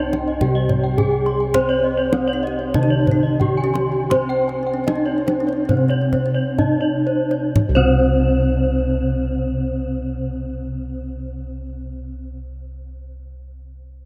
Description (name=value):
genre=Balinese gamelan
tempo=58-106 BPM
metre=4/4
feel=straight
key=C pelog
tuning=A4 = 439 Hz
part: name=gamelan-type bronze metallophone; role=melody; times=0.0-12.4 s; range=C4 to C5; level=-24 LUFS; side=equal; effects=none
part: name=gamelan-type bronze metallophone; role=accompaniment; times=0.0-12.4 s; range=C3 to C4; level=-30 LUFS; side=equal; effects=none
part: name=gamelan-type bronze metallophone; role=arpeggios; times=0.0-12.3 s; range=C5 to Ab5-20c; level=-31 LUFS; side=equal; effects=none
part: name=gamelan-type bossed gongs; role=bass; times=0.0-12.3 s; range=C2 to C5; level=-25 LUFS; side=equal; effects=none
part: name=gamelan-type bronze metallophone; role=arpeggios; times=0.1-12.3 s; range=C5 to C6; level=-28 LUFS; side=equal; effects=none
part: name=kendang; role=percussion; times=0.1-8.0 s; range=none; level=-25 LUFS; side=equal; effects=none
part: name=kalimba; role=second line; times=2.3-7.2 s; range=C4 to G4-30c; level=-34 LUFS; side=equal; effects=none
room=moderate huge ambient reverb, RT60 8.3 s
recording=in a vast, echoing space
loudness=-19 LUFS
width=mono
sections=0.0-7.6 A section; 7.6-11.7 B section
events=slowing down 1.5-7.6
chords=none